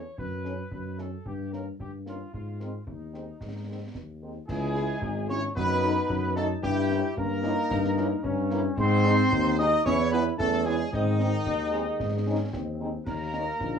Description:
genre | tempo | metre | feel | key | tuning
military-style march for wind band | 112 BPM | 2/4 | straight | unclear | A4 = 439 Hz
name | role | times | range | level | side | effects
clear trumpet section | melody | 0.0-13.8 s | D#4 to D#5 | -34 LUFS | left 2 dB | none
mellow tuba | bass | 0.0-13.8 s | G#1 to G#2 | -29 LUFS | equal | none
concert bass drum, concert snare drum and clash cymbals | drums | 0.2-13.8 s | none | -38 LUFS | left 2 dB | none
warm French horn section | accompaniment | 0.4-13.4 s | D#3 to E4 | -32 LUFS | left 1 dB | none
mellow euphonium | second line | 4.5-13.8 s | D#3 to D#4 | -32 LUFS | right 2 dB | none
mellow wooden piccolo | second line | 4.5-13.8 s | D#5 to D#6 | -32 LUFS | right 1 dB | none
dark trombone section | sustained chords | 4.5-13.8 s | G#3 to E4 | -33 LUFS | left 4 dB | none
room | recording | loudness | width
moderate booth ambience, RT60 0.2 s | worn, warbling old tape, cassette tape, warbly pitch drift | -24 LUFS | side -7 dB against mid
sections
0.0-4.5 A section; 4.5-13.8 A section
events
none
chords
0.2 D#m7b5/F#; 1.3 D#7/G; 2.3 G#; 4.5 C#m; 5.6 D#dim/F#; 6.6 Gdim7; 8.8 G#; 9.9 C#m/E; 10.9 G#; 13.1 D#7

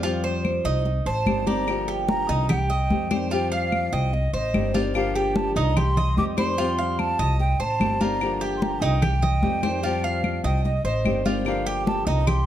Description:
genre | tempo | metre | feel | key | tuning
latin, Cuban son and guajira | 147 BPM | 4/4 | straight | unclear | A4 = 440 Hz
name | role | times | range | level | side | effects
flamenco guitar | accompaniment | 0.0-12.3 s | D3 to G4 | -28 LUFS | left 4 dB | none
Cuban tres | arpeggios | 0.0-12.5 s | Eb4 to F5 | -28 LUFS | right 3 dB | none
upright bass | bass | 0.0-12.5 s | G1 to F2 | -26 LUFS | equal | none
congas | percussion | 0.0-12.5 s | none | -27 LUFS | left 1 dB | none
claves | percussion | 0.4-12.5 s | none | -35 LUFS | left 4 dB | none
mellow hollow jazz flute | melody | 1.1-12.5 s | Eb5 to D6 | -27 LUFS | right 1 dB | plate reverb
room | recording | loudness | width
light reverb | dark, warm production | -21 LUFS | side -11 dB against mid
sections
0.0-1.7 A section; 1.7-12.5 B section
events
flute solo 0.0-1.7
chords
0.0 Cm; 1.7 Gm7; 2.5 Cm; 5.0 Gm7; 5.8 Cm; 8.2 Gm7; 9.0 Cm; 11.5 Gm7

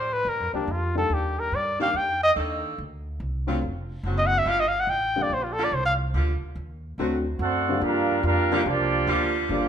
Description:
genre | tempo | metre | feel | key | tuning
jazz, big band swing | 143 BPM | 4/4 | swing 65% on 8ths | G minor | A4 = 439 Hz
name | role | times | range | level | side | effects
mellow trumpet | melody | 0.0-5.9 s | D4 to G5 | -23 LUFS | equal | none
mellow saxophone section | sustained chords | 0.0-9.7 s | D3 to Bb4 | -30 LUFS | right 1 dB | none
upright bass | bass | 0.0-9.7 s | E#1 to A2 | -29 LUFS | equal | none
warm upright piano | accompaniment | 0.5-9.7 s | D3 to G4 | -30 LUFS | left 3 dB | none
dark trumpet section | melody | 7.4-9.7 s | Bb3 to F#5 | -25 LUFS | right 1 dB | none
bright trombone section | second line | 7.4-9.7 s | F3 to F#4 | -27 LUFS | right 4 dB | none
room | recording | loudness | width
wet large studio reverb, RT60 1.4 s | minimal, uncompressed stereo recording | -22 LUFS | side -8 dB against mid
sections
0.0-7.8 A section; 7.8-9.7 B section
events
trumpet solo 0.0-7.8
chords
0.0 Gm7; 1.1 Ebmaj7; 2.8 D7#9; 4.5 Gm7; 7.0 D7; 7.8 Gm7

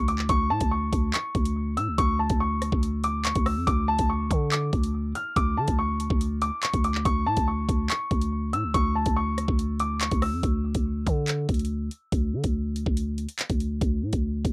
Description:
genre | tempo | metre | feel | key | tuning
hip hop, drill | 142 BPM | 4/4 | half-time | unclear | A4 = 438 Hz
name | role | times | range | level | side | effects
dark baby grand piano | melody | 0.0-10.4 s | A5 to F6 | -28 LUFS | left 1 dB | cassette tape, plate reverb
growling 808-style bass | bass | 0.0-14.5 s | D2 to D3 | -26 LUFS | equal | none
drill drum kit | drums | 0.1-14.5 s | handclaps, hi-hat, kick drum, rim click | -27 LUFS | equal | cassette tape
room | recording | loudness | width
little or no reverb | home recording on cassette | -23 LUFS | side -26 dB against mid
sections
0.0-10.4 A section; 10.4-14.5 B section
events
none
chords
0.3 N.C.; 3.7 Dmaj7(no3); 7.1 N.C.; 13.8 D5

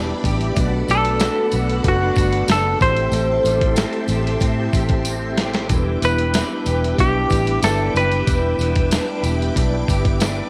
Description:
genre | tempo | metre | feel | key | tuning
indie pop, bedroom pop | 93 BPM | 4/4 | straight | unclear | A4 = 440 Hz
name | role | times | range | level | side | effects
electric guitar through a small old amp | accompaniment | 0.0-10.5 s | A2 to G4 | -32 LUFS | equal | ensemble chorus, vibrato effect
mellow tonewheel organ | accompaniment | 0.0-10.5 s | G3 to C5 | -28 LUFS | equal | fast rotary speaker, cassette tape
string machine, full ensemble | sustained chords | 0.0-10.5 s | G4 to D6 | -30 LUFS | equal | phaser, ensemble chorus
vintage muted fingered electric bass | bass | 0.0-10.4 s | E1 to A2 | -24 LUFS | equal | tube saturation
dusty soul sampler-style drum kit | drums | 0.2-10.4 s | hi-hat, kick drum, snare drum | -24 LUFS | equal | none
tambourine | percussion | 0.3-10.4 s | none | -38 LUFS | equal | none
semi-hollow electric guitar | melody | 0.9-8.9 s | F#4 to C5 | -22 LUFS | equal | analog chorus, slapback echo
room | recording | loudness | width
light reverb, digital ambience | none | -19 LUFS | mono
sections
0.0-10.5 A section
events
drum fill 5.1-5.7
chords
0.0 Em7; 0.6 Bm7; 2.8 Am7; 5.7 Em7

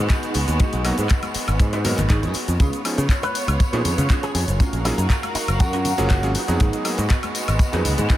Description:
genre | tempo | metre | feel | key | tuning
nu-disco, nu disco | 120 BPM | 4/4 | straight | G# dorian | A4 = 442 Hz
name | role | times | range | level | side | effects
muted chamber violin section | sustained chords | 0.0-8.2 s | G#3 to E#5 | -28 LUFS | right 1 dB | sidechain pumping
modern bright picked electric bass | bass | 0.0-8.1 s | F#1 to C#3 | -22 LUFS | equal | none
electric guitar with an envelope filter | riff | 0.1-8.2 s | C#4 to C#5 | -31 LUFS | right 2 dB | ensemble chorus, tape echo
house drum kit | drums | 0.1-8.2 s | handclaps, hi-hat, shaker, woodblock | -29 LUFS | left 2 dB | none
kick drum | drums | 0.1-8.2 s | none | -18 LUFS | equal | none
tambourine and congas | percussion | 0.1-8.2 s | none | -32 LUFS | left 2 dB | none
bright electric grand piano | accompaniment | 0.8-7.8 s | E#3 to A#4 | -29 LUFS | right 1 dB | sidechain pumping, tape echo
electric guitar with an envelope filter | melody | 3.2-6.3 s | D#4 to B4 | -30 LUFS | equal | lush chorus, tape echo
room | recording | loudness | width
light reverb, small room ambience | none | -18 LUFS | side -14 dB against mid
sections
0.0-8.2 A section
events
none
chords
0.0 G#m7; 2.6 C#7; 4.6 F#maj7; 6.3 G#m7

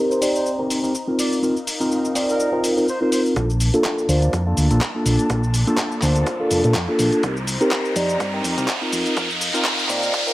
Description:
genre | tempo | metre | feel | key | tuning
filtered disco house | 124 BPM | 4/4 | swing 56% on 16ths | Bb major | A4 = 440 Hz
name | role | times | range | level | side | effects
mellow tine electric piano | accompaniment | 0.0-10.3 s | Bb3 to D5 | -20 LUFS | equal | phaser, sidechain pumping, low-pass filter
rich chamber string section | sustained chords | 0.0-10.3 s | Bb3 to Bb5 | -31 LUFS | left 2 dB | sidechain pumping, low-pass filter
bright trumpet section | melody | 0.1-3.2 s | Bb4 to D5 | -29 LUFS | equal | sidechain pumping, low-pass filter
dusty soul sampler-style drum kit | drums | 0.1-10.3 s | handclaps, hi-hat, shaker | -26 LUFS | equal | sidechain pumping on perc, small room ambience, sidechain pumping on hats
fingered electric bass | bass | 3.4-10.1 s | F1 to Bb2 | -21 LUFS | equal | transformer saturation, sidechain pumping, low-pass filter
electronic kick drum | drums | 3.4-10.2 s | none | -29 LUFS | equal | high-pass filter on kick, small room ambience, high-pass filter on room
riser and swell | sound effects | 5.0-10.3 s | none | -26 LUFS | right 1 dB | none
room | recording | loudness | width
light reverb, digital ambience | dry, gritty hardware recording, transformer saturation, high-pass filter | -18 LUFS | side -16 dB against mid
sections
0.0-3.4 A section; 3.4-10.3 B section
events
filter sweep 0.0-3.4, 3.4-10.3; build-up 3.4-10.3; riser 5.0-10.3; swell 10.1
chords
0.0 Cm7; 1.2 F7sus4; 3.4 Bbmaj7; 7.2 Cm7; 8.9 F7sus4

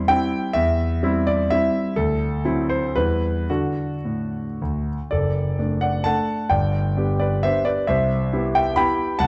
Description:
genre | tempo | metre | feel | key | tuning
classical, romantic triple-time dance for piano with dotted rhythms | 103-141 BPM | 3/4 | rubato | unclear | A4 = 440 Hz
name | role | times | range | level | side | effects
clear concert grand piano | solo | 0.0-9.3 s | F#1 to B5 | -22 LUFS | equal | none
room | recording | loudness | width
moderate recital hall reverb, RT60 1.5 s | dark, warm production | -22 LUFS | mono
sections
0.0-5.1 A section; 5.1-9.3 B section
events
none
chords
0.0 C/E; 2.0 D9; 3.0 Em; 3.5 D; 5.1 D/F#; 6.5 G; 7.9 Cmaj7

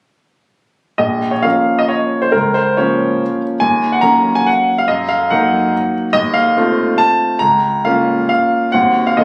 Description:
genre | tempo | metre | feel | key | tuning
classical, romantic triple-time dance for piano with dotted rhythms | 120-152 BPM | 3/4 | rubato | Bb minor | A4 = 440 Hz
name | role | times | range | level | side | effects
clear baby grand piano | solo | 1.0-9.2 s | Bb1 to Bb5 | -14 LUFS | equal | none
room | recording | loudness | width
moderate recital hall reverb, RT60 1.4 s | recorded on a phone in the room, club reverb, compression | -15 LUFS | mono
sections
1.0-9.2 A section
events
none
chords
1.0 Bbm; 2.3 Bbm/Db; 3.6 Ebm7; 4.9 Ebm/Gb; 6.1 F7/Eb; 7.4 Bbm/Db; 8.7 Cdim/Eb

